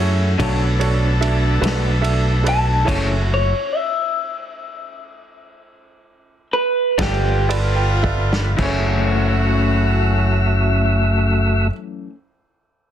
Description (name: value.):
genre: slow blues.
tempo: 36-49 BPM (dotted quarters).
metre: 12/8.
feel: straight.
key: F# minor.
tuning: A4 = 441 Hz.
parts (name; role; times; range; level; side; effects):
clear upright piano; accompaniment; 0.0-11.7 s; D4 to B5; -26 LUFS; right 8 dB; none.
tonewheel organ; sustained chords; 0.0-11.7 s; F#3 to E5; -24 LUFS; equal; slow rotary speaker.
warm horn section; sustained chords; 0.0-11.7 s; G3 to E5; -27 LUFS; left 2 dB; none.
fingered electric bass; bass; 0.0-11.7 s; F#1 to F#2; -18 LUFS; equal; none.
electric guitar through a small old amp; accompaniment; 0.4-12.1 s; F#2 to D4; -24 LUFS; left 6 dB; tremolo.
vintage drum kit; drums; 0.4-8.8 s; crash cymbal, kick drum, ride cymbal, snare drum; -26 LUFS; equal; none.
electric guitar through a small old amp; melody; 2.5-7.5 s; G4 to A5; -21 LUFS; equal; spring reverb.
room: light reverb.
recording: dense, heavily limited modern master.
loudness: -16 LUFS.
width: side -10 dB against mid.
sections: 0.0-8.6 A section; 8.6-12.9 B section.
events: clean electric guitar solo 0.0-8.6; slowing down 1.2-8.6; stop 2.9-7.0; upright piano fill 7.0-8.6; drum fill 8.0-8.6.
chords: 0.4 Bm7; 2.9 F#m7; 7.0 G7; 8.6 F#m7.